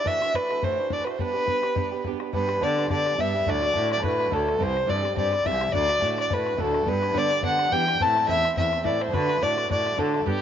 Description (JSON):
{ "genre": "celtic folk, Celtic reel", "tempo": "212 BPM", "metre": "4/4", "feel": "swing 56% on 8ths", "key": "G major", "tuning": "A4 = 440 Hz", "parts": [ { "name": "dark fiddle", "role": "melody", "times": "0.0-10.4 s", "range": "G4 to A5", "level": "-24 LUFS", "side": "equal", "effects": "tape echo" }, { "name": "fingerpicked swing-style acoustic guitar", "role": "accompaniment", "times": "0.0-10.4 s", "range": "D2 to G4", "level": "-31 LUFS", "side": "right 13 dB", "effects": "none" }, { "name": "bodhran", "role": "percussion", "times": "0.1-10.3 s", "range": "none", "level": "-32 LUFS", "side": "left 4 dB", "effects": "none" }, { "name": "baroque flute", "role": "second line", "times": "2.3-10.4 s", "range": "G4 to A5", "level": "-32 LUFS", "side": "left 12 dB", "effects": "none" }, { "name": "warm cello", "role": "bass", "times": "2.3-10.4 s", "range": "C2 to E3", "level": "-29 LUFS", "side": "equal", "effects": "none" } ], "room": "light reverb, small room ambience", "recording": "1960s-style stereo with parts hard left and right, nothing above 7.5 kHz", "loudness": "-22 LUFS", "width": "side -9 dB against mid", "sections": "0.0-2.3 A section; 2.3-10.4 B section", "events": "none", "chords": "0.1 Dadd9; 1.2 G; 3.5 D; 4.6 C; 5.7 D; 6.9 G; 8.0 Am; 9.1 D", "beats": "| 0.07 0.35 0.63 0.92 | 1.20 1.48 1.77 2.05 | 2.33 2.62 2.90 3.19 | 3.47 3.75 4.04 4.32 | 4.60 4.89 5.17 5.45 | 5.74 6.02 6.30 6.58 | 6.87 7.15 7.43 7.72 | 8.00 8.28 8.57 8.85 | 9.13 9.41 9.70 9.98 | 10.26" }